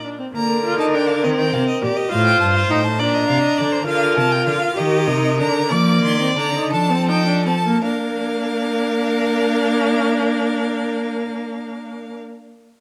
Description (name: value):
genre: classical, baroque-style fugue for string quartet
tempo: 50-69 BPM (dotted quarters)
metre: 6/8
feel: straight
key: Bb major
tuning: A4 = 440 Hz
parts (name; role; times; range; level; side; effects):
- clear violin; melody; 0.0-12.2 s; D5 to D6; -28 LUFS; equal; none
- rich violin; second line; 0.0-12.2 s; A4 to F5; -26 LUFS; equal; none
- rich viola; accompaniment; 0.0-12.2 s; Bb3 to G4; -23 LUFS; equal; none
- rich cello; bass; 0.0-12.2 s; G2 to Bb3; -24 LUFS; equal; none
room: moderate recital hall reverb, RT60 1.7 s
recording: none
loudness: -18 LUFS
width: mono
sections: 0.4-7.8 A section; 7.8-12.6 B section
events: slowing down 3.0-7.8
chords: 0.4 Bb/D; 1.2 Cm7; 2.1 F; 3.0 Bb; 4.8 Eb; 5.7 Bb; 6.7 F7; 7.8 Bb